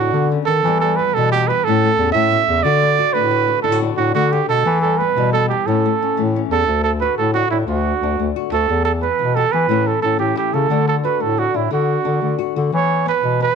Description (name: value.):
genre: highlife guitar band.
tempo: 119 BPM (dotted quarters).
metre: 12/8.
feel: straight.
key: D major.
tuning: A4 = 440 Hz.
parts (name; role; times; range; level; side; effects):
mellow trumpet; melody; 0.0-13.6 s; E4 to E5; -17 LUFS; right 9 dB; none.
flamenco guitar; accompaniment; 0.0-13.6 s; E2 to G4; -24 LUFS; left 16 dB; none.
mellow bass clarinet; bass; 0.0-13.5 s; D2 to E3; -20 LUFS; left 3 dB; none.
room: light reverb, small room ambience.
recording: 1960s-style stereo with parts hard left and right.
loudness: -15 LUFS.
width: side -6 dB against mid.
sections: 0.0-6.7 A section; 6.7-13.6 B section.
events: none.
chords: 0.0 D; 0.6 Em; 1.6 A; 2.6 D; 4.7 Em; 5.7 A; 6.7 D; 8.7 Em; 9.7 A; 10.7 D; 12.7 Em.